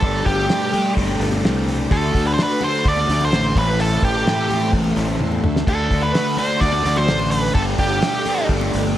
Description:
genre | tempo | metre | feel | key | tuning
psychedelic rock | 128 BPM | 4/4 | straight | unclear | A4 = 440 Hz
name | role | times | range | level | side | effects
octave-fuzz lead guitar | melody | 0.0-8.5 s | G4 to D5 | -22 LUFS | right 2 dB | distortion, tape echo
string machine, full ensemble | sustained chords | 0.0-9.0 s | A4 to D6 | -31 LUFS | right 4 dB | ensemble chorus
crunchy overdriven guitar | riff | 0.0-9.0 s | A2 to G4 | -21 LUFS | left 1 dB | phaser
fuzz fingered electric bass | bass | 0.0-8.9 s | G1 to E2 | -23 LUFS | equal | overdrive
cloth-damped thuddy drum kit | drums | 0.0-8.8 s | crash cymbal, hi-hat, kick drum, snare drum, splash cymbal, toms | -23 LUFS | equal | none
congas | percussion | 0.7-9.0 s | none | -34 LUFS | left 10 dB | none
room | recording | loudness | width
little or no reverb | none | -16 LUFS | side -12 dB against mid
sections
0.0-9.0 A section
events
drum fill 5.2-5.7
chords
0.0 Gsus2; 1.9 D; 3.6 Am; 5.7 D; 7.6 Gsus2

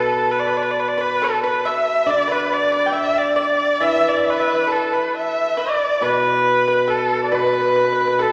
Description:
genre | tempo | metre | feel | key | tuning
chinese traditional, Chinese chamber ensemble | 69 BPM | 2/4 | straight | unclear | A4 = 438 Hz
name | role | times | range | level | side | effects
rich erhu | melody | 0.0-8.3 s | A4 to E5 | -20 LUFS | equal | none
pipa | second line | 0.0-8.3 s | A4 to G5 | -28 LUFS | equal | none
hammered dulcimer | accompaniment | 0.0-8.3 s | B2 to E3 | -25 LUFS | equal | none
room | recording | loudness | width
wet scoring stage reverb, RT60 2.2 s | vinyl crackle | -19 LUFS | mono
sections
0.0-8.3 A section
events
none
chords
none

